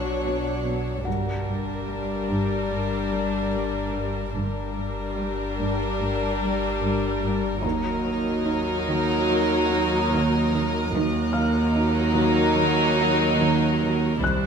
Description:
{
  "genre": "cinematic",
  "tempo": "73 BPM",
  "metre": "4/4",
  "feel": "straight",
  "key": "unclear",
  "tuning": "A4 = 439 Hz",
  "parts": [
    { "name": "warm chamber violin section", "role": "melody", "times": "0.0-14.5 s", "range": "Bb4 to C#5", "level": "-31 LUFS", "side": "left 1 dB", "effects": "none" },
    { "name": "warm symphonic violin section", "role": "second line", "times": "0.0-14.5 s", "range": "D4 to E4", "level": "-28 LUFS", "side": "left 2 dB", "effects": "none" },
    { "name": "dark chamber viola section", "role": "accompaniment", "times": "0.0-14.5 s", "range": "F#3 to G3", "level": "-28 LUFS", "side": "left 1 dB", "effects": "none" },
    { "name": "warm symphonic cello section", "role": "riff", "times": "0.0-14.5 s", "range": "G2 to D#4", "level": "-30 LUFS", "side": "right 2 dB", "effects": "none" },
    { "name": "rich symphonic cello section", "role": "bass", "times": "0.0-14.5 s", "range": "C2 to B2", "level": "-28 LUFS", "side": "right 2 dB", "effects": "none" },
    { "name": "deep rumbling drone", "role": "drone", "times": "0.0-14.5 s", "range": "G1 to D#2", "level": "-33 LUFS", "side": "equal", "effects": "built-in reverb" },
    { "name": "felt-muted upright piano", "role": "texture", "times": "0.0-14.5 s", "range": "F#4 to F#6", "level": "-33 LUFS", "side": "left 4 dB", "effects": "none" },
    { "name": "warm symphonic violin section", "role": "texture", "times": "0.0-0.6, 7.6-13.8 s", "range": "A#5 to E#6", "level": "-36 LUFS", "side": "equal", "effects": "none" },
    { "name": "warm symphonic double bass section", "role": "bass", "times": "1.1-14.5 s", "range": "G1 to D#2", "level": "-33 LUFS", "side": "right 2 dB", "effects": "none" }
  ],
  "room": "moderate recital hall reverb, RT60 1.2 s",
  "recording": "minimal, uncompressed stereo recording",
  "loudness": "-21 LUFS",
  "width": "side -6 dB against mid",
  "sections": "0.0-14.5 A section",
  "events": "none",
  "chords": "0.0 Bmadd9; 1.1 Gm; 7.6 D#m",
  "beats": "0.24 | 1.07 1.89 2.71 3.53 | 4.35 5.17 6.00 6.82 | 7.64 8.46 9.29 10.11 | 10.93 11.75 12.57 13.39 | 14.22"
}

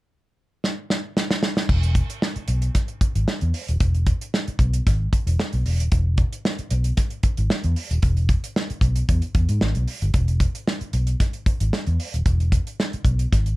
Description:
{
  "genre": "funk",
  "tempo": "114 BPM",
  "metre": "4/4",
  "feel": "straight",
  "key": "E major",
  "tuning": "A4 = 442 Hz",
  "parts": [
    { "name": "warm soul drum kit", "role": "drums", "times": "0.6-13.6 s", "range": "crash cymbal, hi-hat, kick drum, snare drum", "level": "-22 LUFS", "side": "equal", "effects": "none" },
    { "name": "vintage muted fingered electric bass", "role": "bass", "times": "1.7-13.5 s", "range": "D#1 to G#2", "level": "-21 LUFS", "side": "equal", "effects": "none" }
  ],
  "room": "little or no reverb",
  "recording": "none",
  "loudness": "-20 LUFS",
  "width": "side -20 dB against mid",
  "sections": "0.0-1.7 A section; 1.7-13.6 B section",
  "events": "drum fill 0.6-1.7",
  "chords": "none",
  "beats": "0.11 0.64 1.16 | 1.69 2.22 2.75 3.27 | 3.80 4.33 4.86 5.38 | 5.91 6.44 6.97 7.50 | 8.03 8.55 9.08 9.61 | 10.14 10.67 11.20 11.73 | 12.26 12.79 13.32"
}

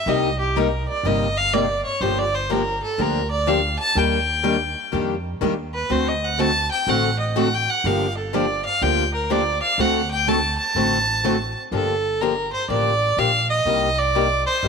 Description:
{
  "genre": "acoustic string swing (jazz manouche)",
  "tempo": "124 BPM",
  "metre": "4/4",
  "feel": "swing 64% on 8ths",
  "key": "G minor",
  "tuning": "A4 = 440 Hz",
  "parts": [
    { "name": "clear violin", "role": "melody", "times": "0.0-14.7 s", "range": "G4 to A5", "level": "-21 LUFS", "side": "right 1 dB", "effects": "none" },
    { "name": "picked acoustic archtop guitar", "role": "accompaniment", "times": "0.1-14.7 s", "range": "C3 to A4", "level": "-25 LUFS", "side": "left 11 dB", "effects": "none" },
    { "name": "picked steel-string acoustic guitar", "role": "accompaniment", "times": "0.1-11.4 s", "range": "C3 to A4", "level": "-27 LUFS", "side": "right 12 dB", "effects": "none" },
    { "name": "upright bass", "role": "bass", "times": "0.1-14.7 s", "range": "G1 to F2", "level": "-27 LUFS", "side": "right 1 dB", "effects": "none" }
  ],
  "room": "moderate plate reverb, RT60 3.1 s",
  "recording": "1960s-style stereo with parts hard left and right",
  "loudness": "-18 LUFS",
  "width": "side -5 dB against mid",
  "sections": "0.0-11.7 A section; 11.7-14.7 B section",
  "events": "violin solo 0.0-11.7",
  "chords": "0.0 Cm7; 2.0 Gm7; 4.0 Ebmaj7; 5.9 D7; 7.8 Gm7; 9.8 D7; 11.7 Gm7; 13.7 Cm7",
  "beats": "| 0.06 0.55 1.03 1.52 | 2.01 2.49 2.98 3.47 | 3.95 4.44 4.92 5.41 | 5.90 6.38 6.87 7.35 | 7.84 8.32 8.81 9.29 | 9.78 10.26 10.75 11.23 | 11.72 12.20 12.69 13.17 | 13.66 14.14 14.63"
}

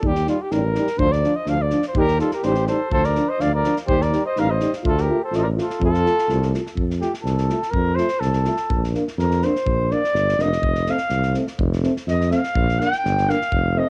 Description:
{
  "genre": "balkan folk, Balkan brass band",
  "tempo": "125 BPM",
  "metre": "2/4",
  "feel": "straight",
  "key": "F mixolydian",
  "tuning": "A4 = 440 Hz",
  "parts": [
    { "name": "mellow cornet", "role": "melody", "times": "0.0-6.5 s", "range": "F4 to F5", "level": "-26 LUFS", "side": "equal", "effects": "plate reverb, analog delay" },
    { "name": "dark euphonium", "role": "accompaniment", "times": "0.0-13.9 s", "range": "C4 to F4", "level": "-28 LUFS", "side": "equal", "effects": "cassette tape, plate reverb" },
    { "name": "mellow tuba", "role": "bass", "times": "0.0-13.8 s", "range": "F1 to F2", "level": "-24 LUFS", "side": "equal", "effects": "tube saturation" },
    { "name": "natural country drum kit", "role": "percussion", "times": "0.0-13.6 s", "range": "kick drum, snare drum", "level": "-31 LUFS", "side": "equal", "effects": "cassette tape" },
    { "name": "warm euphonium", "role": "accompaniment", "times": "0.1-13.9 s", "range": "F3 to Bb3", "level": "-33 LUFS", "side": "equal", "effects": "cassette tape, plate reverb" },
    { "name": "mellow trumpet", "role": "second line", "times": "2.0-13.9 s", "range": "F4 to G5", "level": "-26 LUFS", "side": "equal", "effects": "cassette tape, plate reverb" }
  ],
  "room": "moderate booth ambience, RT60 0.2 s",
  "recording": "home recording on cassette",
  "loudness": "-21 LUFS",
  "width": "mono",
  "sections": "0.0-6.8 A section; 6.8-13.9 B section",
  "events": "trumpet solo 6.8-13.9",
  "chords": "0.0 Eb; 1.0 Dm; 2.0 Eb; 2.9 Dm; 3.9 Eb; 4.9 Dm; 5.8 F; 8.7 Bb; 10.6 F; 12.6 Bb",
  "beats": "| 0.03 0.52 | 1.00 1.48 | 1.96 2.44 | 2.92 3.41 | 3.89 4.37 | 4.85 5.33 | 5.82 6.30 | 6.78 7.26 | 7.74 8.22 | 8.71 9.19 | 9.67 10.15 | 10.63 11.11 | 11.60 12.08 | 12.56 13.04 | 13.52"
}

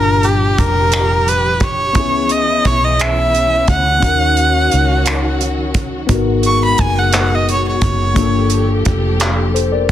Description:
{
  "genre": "slow six-eight R&B",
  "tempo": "58 BPM (dotted quarters)",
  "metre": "6/8",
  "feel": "straight",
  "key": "unclear",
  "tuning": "A4 = 439 Hz",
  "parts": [
    { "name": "clear erhu", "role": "melody", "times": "0.0-8.7 s", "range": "G4 to C#6", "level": "-16 LUFS", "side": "right 1 dB", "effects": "slapback echo" },
    { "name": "tine electric piano", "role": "accompaniment", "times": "0.0-9.9 s", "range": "Bb2 to A5", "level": "-20 LUFS", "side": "left 6 dB", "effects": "lush chorus" },
    { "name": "warm studio string section", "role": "sustained chords", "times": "0.0-9.9 s", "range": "B2 to A4", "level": "-24 LUFS", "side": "right 1 dB", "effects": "none" },
    { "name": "vintage muted fingered electric bass", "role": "bass", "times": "0.0-9.9 s", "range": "F1 to D#2", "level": "-18 LUFS", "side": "equal", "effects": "none" },
    { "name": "warm soul drum kit", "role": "drums", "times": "0.2-9.9 s", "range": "finger snaps, handclaps, hi-hat, kick drum", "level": "-18 LUFS", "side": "right 1 dB", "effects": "none" }
  ],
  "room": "light reverb",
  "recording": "dense, heavily limited modern master",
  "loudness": "-12 LUFS",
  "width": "side -11 dB against mid",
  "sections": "0.0-9.9 A section",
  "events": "erhu solo 0.0-9.9",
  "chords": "0.0 Gm9; 2.0 C#m7; 4.0 D#m7; 6.1 G#m9; 8.2 Gm9",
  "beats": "0.92 | 1.96 2.99 | 4.03 5.06 | 6.10 7.13 | 8.16 9.20"
}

